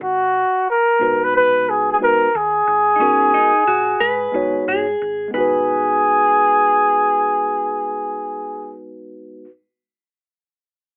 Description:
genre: hip hop, jazz-hop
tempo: 90 BPM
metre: 4/4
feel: swing 65% on 16ths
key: G# minor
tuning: A4 = 440 Hz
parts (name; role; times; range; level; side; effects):
- breathy flugelhorn; melody; 0.0-8.8 s; F#4 to B4; -18 LUFS; equal; none
- hollow-body short-scale fingered electric bass; bass; 0.0-9.5 s; G#1 to G#2; -42 LUFS; equal; none
- mellow tine electric piano; accompaniment; 1.0-9.5 s; G#3 to C#5; -26 LUFS; equal; none
- mellow electric guitar; second line; 3.0-9.5 s; C#4 to B4; -24 LUFS; equal; none
room: light reverb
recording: telephone sound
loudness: -17 LUFS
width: mono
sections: 0.0-5.3 A section; 5.3-8.0 B section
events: none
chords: 0.0 G#m9; 5.3 G#m7

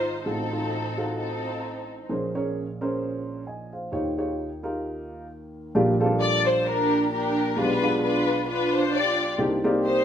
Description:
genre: gospel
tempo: 131 BPM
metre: 4/4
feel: swing 57% on 8ths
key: Bb major from 5.7 s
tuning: A4 = 439 Hz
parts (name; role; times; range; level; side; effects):
- muted studio string section; melody; 0.0-2.1, 6.2-10.0 s; C4 to D5; -24 LUFS; left 1 dB; none
- dark upright piano; accompaniment; 0.0-10.0 s; Ab1 to Ab5; -26 LUFS; equal; none
room: wet large studio reverb, RT60 1.1 s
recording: band playing live in one room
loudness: -23 LUFS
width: side -9 dB against mid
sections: 0.0-5.7 A section; 5.7-10.0 B section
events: none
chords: 0.3 F7b9/A; 2.1 Bbm9; 3.9 Eb9; 5.7 Bb6; 7.6 G7b9/B; 9.4 Cm9

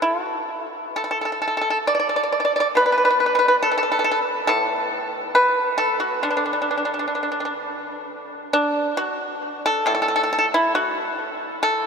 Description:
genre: chinese traditional, Chinese solo plucked strings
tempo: 67 BPM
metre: 2/4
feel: uneven beats, rubato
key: D gong mode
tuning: A4 = 439 Hz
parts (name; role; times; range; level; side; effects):
- pipa; solo; 0.0-11.9 s; A2 to D5; -19 LUFS; equal; analog delay
room: wet huge ambient reverb, RT60 8.6 s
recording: dreamy mix soaked in reverb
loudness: -19 LUFS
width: side -6 dB against mid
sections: 0.0-8.1 A section; 8.1-11.9 B section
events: none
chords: none

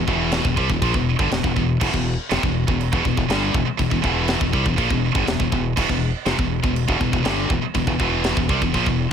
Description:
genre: heavy metal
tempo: 121 BPM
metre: 4/4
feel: straight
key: E phrygian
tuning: A4 = 440 Hz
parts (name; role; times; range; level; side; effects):
- heavy high-gain guitar; riff; 0.0-9.1 s; E2 to G3; -23 LUFS; right 13 dB; distortion
- scooped high-gain guitar; riff; 0.0-9.1 s; E2 to G3; -24 LUFS; left 10 dB; distortion
- fingered electric bass; bass; 0.0-9.1 s; E1 to C2; -25 LUFS; equal; none
- tight metal drum kit; drums; 0.1-9.0 s; china cymbal, crash cymbal, kick drum, snare drum; -24 LUFS; equal; none
room: light reverb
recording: none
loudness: -18 LUFS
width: side -8 dB against mid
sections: 0.0-9.1 A section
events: none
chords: 0.0 Em

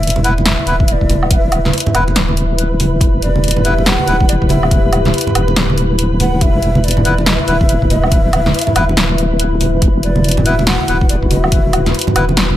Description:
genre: deep dubstep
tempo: 141 BPM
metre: 4/4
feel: swing 62% on 16ths, half-time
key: E minor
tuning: A4 = 442 Hz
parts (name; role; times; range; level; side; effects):
- breathy mellow low ney; melody; 0.0-11.9 s; D5 to F#5; -22 LUFS; equal; dub echo
- dark analog pad; sustained chords; 0.0-12.6 s; E4 to E5; -22 LUFS; left 4 dB; chorus
- deep soft wobble bass; bass; 0.0-12.6 s; D1 to E1; -15 LUFS; equal; chorus
- deep house drum kit; drums; 0.0-12.5 s; hi-hat, snare drum, woodblock; -17 LUFS; equal; none
- flickering grainy texture; texture; 0.0-12.6 s; B4; -24 LUFS; equal; built-in reverb
- melodica; stabs; 0.2-4.2, 7.1-12.3 s; B3 to B4; -22 LUFS; left 1 dB; dub echo
- congas; percussion; 0.2-12.6 s; none; -20 LUFS; right 2 dB; none
- electronic kick drum; drums; 0.8-11.6 s; none; -14 LUFS; equal; none
room: little or no reverb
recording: none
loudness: -11 LUFS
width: side -13 dB against mid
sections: 0.0-12.6 A section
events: none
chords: 0.0 E5

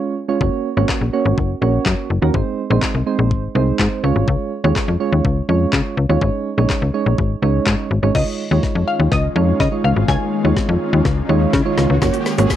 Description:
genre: dance-pop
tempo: 124 BPM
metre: 4/4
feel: straight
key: Db major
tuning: A4 = 440 Hz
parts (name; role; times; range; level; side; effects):
- soft electric-piano-like synth keys; accompaniment; 0.0-12.6 s; Ab3 to Db5; -20 LUFS; right 6 dB; chorus, sidechain pumping, cassette tape
- slap-like FM bass; bass; 0.4-12.5 s; Gb1 to Db3; -16 LUFS; left 2 dB; sidechain pumping
- smooth R&B drum kit; drums; 0.4-12.6 s; crash cymbal, handclaps, hi-hat, kick drum, shaker, snare drum; -21 LUFS; left 2 dB; cassette tape
- glassy wavetable pluck; melody; 8.1-11.0 s; Eb5 to Ab5; -23 LUFS; left 2 dB; chorus, cassette tape
- riser; sound effects; 10.1-12.6 s; none; -30 LUFS; left 3 dB; none
- ethereal airy pad; sustained chords; 8.9-12.6 s; Db3 to Gb4; -24 LUFS; left 3 dB; ensemble chorus, built-in reverb, sidechain pumping, cassette tape
- tambourine; percussion; 12.0-12.6 s; none; -36 LUFS; left 15 dB; none
room: moderate small room reverb, RT60 0.5 s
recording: home recording on cassette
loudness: -15 LUFS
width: side -11 dB against mid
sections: 0.0-8.2 A section; 8.2-12.6 B section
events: build-up 8.2-12.6; drum fill 8.2-12.6; riser 10.1-12.6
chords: 0.4 Gb; 2.3 Ab; 4.0 Db; 6.2 Absus4; 8.2 Dbadd9; 12.0 Gb

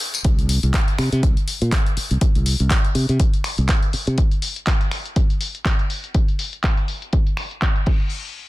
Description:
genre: filtered disco house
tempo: 122 BPM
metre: 4/4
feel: swing 57% on 16ths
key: unclear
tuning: A4 = 442 Hz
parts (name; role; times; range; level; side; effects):
- punchy analog drum machine; drums; 0.0-8.0 s; crash cymbal, finger snaps, handclaps, hi-hat, tambourine; -26 LUFS; left 1 dB; sidechain pumping on hats, low-pass filter on hats, sidechain pumping on perc, low-pass filter on perc, low-pass filter on snare, sidechain pumping on cymbals, low-pass filter on cymbals, low-pass filter on room
- modern bright fingered electric bass; bass; 0.2-4.2 s; C2 to C3; -19 LUFS; equal; sidechain pumping, low-pass filter
- electronic kick drum; drums; 0.2-8.0 s; none; -18 LUFS; equal; none
room: little or no reverb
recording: dense, heavily limited modern master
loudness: -18 LUFS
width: side -19 dB against mid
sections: 0.2-8.1 A section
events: break 0.0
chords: none

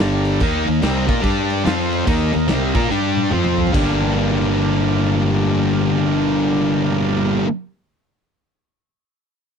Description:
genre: blues rock power trio and southern rock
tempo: 145 BPM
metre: 4/4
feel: swing 64% on 8ths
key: G minor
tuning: A4 = 440 Hz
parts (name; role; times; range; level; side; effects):
- overdriven tonewheel organ; sustained chords; 0.0-7.4 s; F3 to F5; -28 LUFS; right 7 dB; slow rotary speaker
- thick fuzz guitar; riff; 0.0-7.5 s; G2 to Bb4; -17 LUFS; left 1 dB; distortion
- fuzz fingered electric bass; bass; 0.0-7.4 s; G1 to Bb2; -23 LUFS; equal; overdrive
- big rock drum kit; drums; 0.0-3.9 s; crash cymbal, kick drum, snare drum, toms; -23 LUFS; right 1 dB; none
room: little or no reverb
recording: dry, close 1970s-style studio recording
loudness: -16 LUFS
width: side -6 dB against mid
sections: 0.0-3.7 A section; 3.7-7.1 B section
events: drum fill 2.9-3.7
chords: 0.4 Eb5; 1.2 G5; 1.7 F5; 2.1 Eb5; 2.9 G5; 3.3 F5; 3.7 Gm

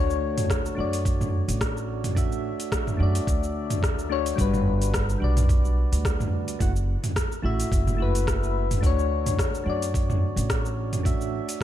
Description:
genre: sunset chillout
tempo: 108 BPM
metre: 4/4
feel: swing 55% on 16ths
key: D major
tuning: A4 = 440 Hz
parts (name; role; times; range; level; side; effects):
- soft electric-piano-like synth keys; accompaniment; 0.0-11.6 s; G3 to F#5; -29 LUFS; moving between left 9 dB and right 7 dB; chorus, tremolo, auto-pan, digital delay
- upright bass; bass; 0.0-11.4 s; F#1 to F#2; -26 LUFS; equal; tube saturation
- deep house drum kit; drums; 0.1-11.6 s; cabasa, hi-hat, rim click, toms; -29 LUFS; right 1 dB; overdrive
- electronic kick drum; drums; 0.5-11.6 s; none; -26 LUFS; equal; overdrive
room: little or no reverb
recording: dark, warm production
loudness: -22 LUFS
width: side -12 dB against mid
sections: 0.0-11.6 A section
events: none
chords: 0.0 Dmaj7; 4.4 Gmaj7; 6.6 F#m7; 8.8 Dmaj7

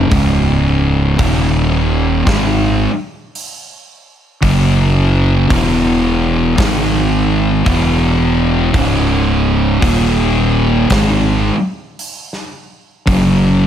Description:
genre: stoner and doom metal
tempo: 56 BPM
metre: 4/4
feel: swing 58% on 8ths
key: unclear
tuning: A4 = 440 Hz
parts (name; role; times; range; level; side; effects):
- thick fuzz guitar; riff; 0.0-13.7 s; C#2 to G#3; -13 LUFS; equal; distortion
- fuzz fingered electric bass; bass; 0.0-13.7 s; C#1 to G#1; -16 LUFS; equal; overdrive
- big rock drum kit; drums; 0.1-13.4 s; hi-hat, kick drum, snare drum; -20 LUFS; equal; none
room: light reverb, studio ambience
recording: none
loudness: -11 LUFS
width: side -10 dB against mid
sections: 0.1-13.7 A section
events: none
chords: 0.1 C#5; 1.2 D#5; 2.3 G#5; 4.4 F#5; 5.5 E5; 6.6 G#5; 7.7 E5; 8.7 C#5; 9.8 D#5; 10.9 G#5; 13.1 F#5

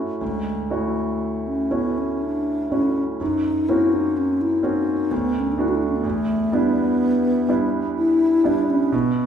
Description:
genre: classical, impressionist duo for alto flute and grand piano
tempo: 62 BPM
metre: 3/4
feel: uneven beats, rubato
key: unclear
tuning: A4 = 439 Hz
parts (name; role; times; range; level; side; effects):
- clear concert grand piano; accompaniment; 0.0-9.3 s; D2 to F#4; -23 LUFS; right 3 dB; none
- mellow hollow wooden-headed alto flute; melody; 0.2-9.3 s; G#3 to F#4; -21 LUFS; left 1 dB; none
room: wet recital hall reverb, RT60 1.3 s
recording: heard from further back in the room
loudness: -19 LUFS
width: side -8 dB against mid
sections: 0.0-9.3 A section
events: none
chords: 0.2 Dmaj9; 3.2 F#; 5.1 D6; 6.0 Em7

